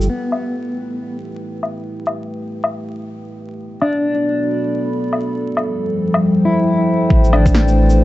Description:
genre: future garage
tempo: 137 BPM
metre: 4/4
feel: swing 62% on 16ths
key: A minor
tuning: A4 = 438 Hz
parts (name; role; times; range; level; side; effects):
- dark analog pad; sustained chords; 0.0-8.0 s; F3 to B5; -20 LUFS; equal; chorus, sidechain pumping
- warm sub bass; bass; 0.0-0.1, 7.1-8.0 s; A1; -14 LUFS; equal; sidechain pumping
- electronic shaker, woodblock and snare drum; drums; 0.0-8.0 s; none; -21 LUFS; left 2 dB; overdrive, low-pass filter on perc, studio reverb, low-pass filter on snare
- mellow electric guitar; accompaniment; 0.1-1.2, 3.8-8.0 s; B3 to E4; -20 LUFS; left 1 dB; harmonic tremolo, sidechain pumping, analog delay
- electronic kick drum; drums; 7.1-7.5 s; none; -14 LUFS; equal; overdrive, studio reverb
room: light reverb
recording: vinyl crackle, nothing above 7.9 kHz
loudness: -15 LUFS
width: side -16 dB against mid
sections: 0.1-7.1 A section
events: filter sweep on analog synth pad 0.1-7.1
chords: 0.1 Asus2; 3.6 Bm7; 5.3 G7sus4; 7.1 Am9

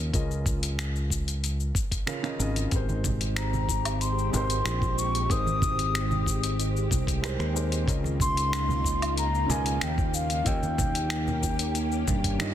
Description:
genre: sunset chillout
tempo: 93 BPM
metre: 4/4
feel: straight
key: Ab major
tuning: A4 = 440 Hz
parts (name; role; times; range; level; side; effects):
- warm grand piano; accompaniment; 0.0-12.5 s; Db3 to F5; -36 LUFS; moving between left 4 dB and right 6 dB; auto-pan, low-pass filter, digital delay
- fingered electric bass; bass; 0.0-12.5 s; Ab1 to G2; -28 LUFS; equal; none
- dusty soul sampler-style drum kit; drums; 0.1-12.5 s; finger snaps, hi-hat, shaker, woodblock; -33 LUFS; left 4 dB; soft clipping on snare
- electronic kick drum; drums; 0.1-12.4 s; none; -29 LUFS; equal; none
- soft string machine; sustained chords; 3.1-12.5 s; Db3 to G4; -34 LUFS; equal; ensemble chorus
- congas and bongos; percussion; 2.9-12.2 s; none; -35 LUFS; right 3 dB; none
- baroque flute; melody; 3.4-12.4 s; F5 to Eb6; -30 LUFS; left 2 dB; digital delay
room: light reverb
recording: dense, heavily limited modern master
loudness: -24 LUFS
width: side -11 dB against mid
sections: 0.0-12.5 A section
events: none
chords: 0.0 Db69; 2.7 Abmaj9; 7.9 Db69; 10.5 Eb7

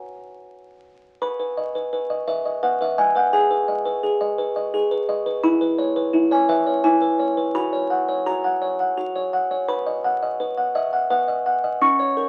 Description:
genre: classical, lullaby for music box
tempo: 85 BPM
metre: 3/4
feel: straight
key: B major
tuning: A4 = 440 Hz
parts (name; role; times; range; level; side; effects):
- music box; solo; 0.0-12.3 s; C#4 to C#6; -22 LUFS; equal; none
room: wet studio reverb, RT60 0.5 s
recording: very old 78 rpm record, vinyl crackle, nothing above 10.8 kHz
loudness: -22 LUFS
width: mono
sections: 0.0-1.2 A section; 1.2-12.3 B section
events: none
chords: 0.0 F#; 1.2 B; 3.3 G#m; 5.4 C#m7/E; 7.5 F#; 9.7 B

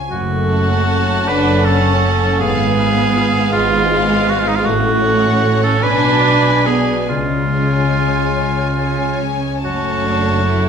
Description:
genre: classical, slow romantic movement for symphony orchestra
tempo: 46-54 BPM (dotted quarters)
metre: 6/8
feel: rubato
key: F# minor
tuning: A4 = 440 Hz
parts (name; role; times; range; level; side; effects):
- rich studio violin section; melody; 0.0-10.7 s; F5 to A5; -26 LUFS; left 4 dB; none
- concert harp; arpeggios; 0.0-10.7 s; F#2 to D5; -23 LUFS; left 8 dB; none
- clear oboe; second line; 0.1-10.7 s; D#4 to B4; -18 LUFS; right 1 dB; none
- warm studio viola section; accompaniment; 0.1-10.7 s; Ab3 to D4; -19 LUFS; right 2 dB; none
- dark studio cello section; bass; 0.1-10.7 s; F#2 to C#3; -20 LUFS; right 2 dB; none
- warm studio double bass section; bass; 0.1-10.7 s; F#1 to C#2; -23 LUFS; right 4 dB; none
- warm studio violin section; second line; 0.5-10.7 s; Cb4 to F#5; -24 LUFS; left 3 dB; none
room: wet recital hall reverb, RT60 1.6 s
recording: none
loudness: -13 LUFS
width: side -7 dB against mid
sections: 0.1-10.7 A section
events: none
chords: 0.1 F#m; 2.4 Fdim/Ab; 4.6 F#m/A; 5.8 G#dim/B; 7.1 C#; 9.6 F#m

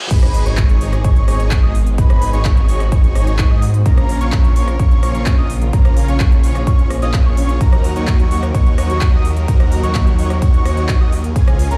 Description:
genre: EDM, festival progressive house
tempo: 128 BPM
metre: 4/4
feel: straight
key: Eb minor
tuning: A4 = 440 Hz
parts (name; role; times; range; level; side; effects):
- clear symphonic string section; sustained chords; 0.0-11.8 s; Cb3 to Bb4; -31 LUFS; equal; sidechain pumping
- riser, reverse cymbal and sub drop; sound effects; 0.0-2.0 s; none; -28 LUFS; equal; none
- unison lead; arpeggios; 0.1-11.8 s; Ab5 to Eb6; -30 LUFS; equal; subtle chorus, sidechain pumping, tape echo
- dense compressed supersaw; riff; 0.1-11.8 s; Db4 to Eb5; -28 LUFS; equal; cassette tape, sidechain pumping, tape echo
- detuned saw bass; bass; 0.1-11.8 s; Ab1 to Ab2; -20 LUFS; equal; chorus, sidechain pumping, high-pass filter
- big-room dance drum kit; drums; 0.1-11.8 s; crash cymbal, handclaps, hi-hat, ride cymbal, rim click; -30 LUFS; equal; high-pass filter on snare, high-pass filter on hats, high-pass filter on cymbals, high-pass filter on room
- electronic kick drum; drums; 0.1-11.5 s; none; -15 LUFS; equal; none
room: little or no reverb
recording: played on a big sound system in a bare room, large studio reverb, high-pass filter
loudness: -14 LUFS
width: mono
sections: 0.1-11.8 A section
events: drop 0.1-11.8; impact 0.1-2.0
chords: 0.1 Abm; 3.9 Bbm; 7.6 Ebm

